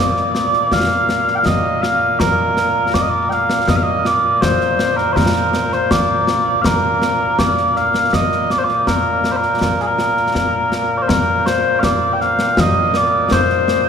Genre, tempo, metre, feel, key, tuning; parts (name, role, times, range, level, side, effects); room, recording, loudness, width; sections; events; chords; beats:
scottish traditional, Scottish pipe music; 81 BPM; 3/4; straight; Bb major; A4 = 439 Hz
mellow small bagpipes; melody; 0.0-13.9 s; Bb2 to G5; -15 LUFS; equal
concert snare drum and concert bass drum; drums; 0.2-13.9 s; -19 LUFS; left 1 dB
wet cathedral reverb, RT60 7.0 s; recorded in a church or concert hall; -14 LUFS; side -7 dB against mid
0.0-11.1 A section; 11.1-13.9 A section
0.72 1.46 | 2.21 2.95 3.69 | 4.43 5.17 5.91 | 6.65 7.39 8.13 | 8.87 9.61 10.35 | 11.09 11.83 12.57 | 13.32